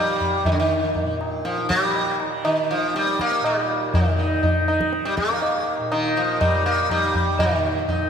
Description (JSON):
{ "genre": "indian classical, Hindustani", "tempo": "121 BPM", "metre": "7/4", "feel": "straight", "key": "Eb raga hamsadhwani", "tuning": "A4 = 439 Hz", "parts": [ { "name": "sitar", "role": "melody", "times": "0.0-8.1 s", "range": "D3 to Eb4", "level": "-21 LUFS", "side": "equal", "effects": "tape echo" }, { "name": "tanpura", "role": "drone", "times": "0.0-8.1 s", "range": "Eb2 to Eb3", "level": "-31 LUFS", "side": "right 2 dB", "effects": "none" }, { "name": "tabla", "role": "percussion", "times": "0.2-8.1 s", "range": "none", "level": "-24 LUFS", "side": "equal", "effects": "none" } ], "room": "wet lush hall reverb, RT60 2.5 s", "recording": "dreamy mix soaked in reverb", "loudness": "-19 LUFS", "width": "side -7 dB against mid", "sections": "0.0-7.4 A section", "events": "none", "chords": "none", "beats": "| 0.45 0.95 1.45 1.95 2.45 2.94 3.44 | 3.94 4.43 4.93 5.42 5.92 6.41 6.90 | 7.39 7.88" }